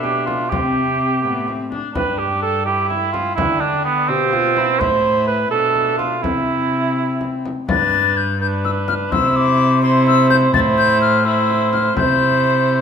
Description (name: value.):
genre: classical, renaissance-style consort dance.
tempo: 84 BPM (dotted quarters).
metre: 6/8.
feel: straight.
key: G mixolydian.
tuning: A4 = 440 Hz.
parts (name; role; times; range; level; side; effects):
concert flute; melody; 0.0-12.8 s; E5 to A6; -21 LUFS; left 8 dB; none.
mellow cor anglais; second line; 0.0-12.8 s; B3 to C5; -18 LUFS; right 4 dB; none.
rich viola; accompaniment; 0.0-12.8 s; B3 to G4; -25 LUFS; left 4 dB; none.
rich cello; bass; 0.0-12.8 s; G2 to D3; -21 LUFS; equal; none.
frame drum; percussion; 0.0-12.2 s; none; -27 LUFS; left 3 dB; none.
room: wet recital hall reverb, RT60 1.4 s.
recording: minimal, uncompressed stereo recording.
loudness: -15 LUFS.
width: side -7 dB against mid.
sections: 0.0-7.7 A section; 7.7-12.8 A section.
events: none.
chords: 0.0 Am; 2.0 G5; 3.4 Dm; 4.8 Am; 6.2 C; 7.7 G; 9.1 C; 10.5 Am; 12.0 C.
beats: | 0.52 1.24 | 1.95 2.67 | 3.38 4.10 | 4.81 5.52 | 6.24 6.97 | 7.69 8.41 | 9.12 9.83 | 10.54 11.25 | 11.97 12.69.